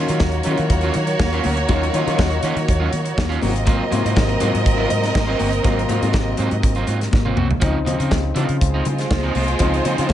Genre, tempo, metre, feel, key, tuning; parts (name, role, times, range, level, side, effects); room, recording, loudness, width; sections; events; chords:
disco; 121 BPM; 4/4; straight; A4 = 444 Hz
warm studio violin section; second line; 0.0-10.1 s; Ab3 to Eb5; -23 LUFS; right 2 dB
dark concert grand piano; accompaniment; 0.0-10.1 s; C3 to F4; -25 LUFS; left 7 dB
electric guitar at the edge of break-up; accompaniment; 0.0-10.1 s; F3 to Gb4; -26 LUFS; right 5 dB
vintage muted fingered electric bass; bass; 0.0-10.1 s; G1 to Eb3; -22 LUFS; equal
modern studio drum kit; drums; 0.1-10.1 s; hi-hat, kick drum, snare drum, toms; -22 LUFS; equal
congas; percussion; 0.2-10.1 s; -29 LUFS; left 6 dB
small room ambience; nothing above 10.8 kHz; -16 LUFS; side -11 dB against mid
0.0-10.1 A section
drum fill 7.1-7.6
0.0 Ebm9; 3.4 Ab13; 7.6 Dbmaj9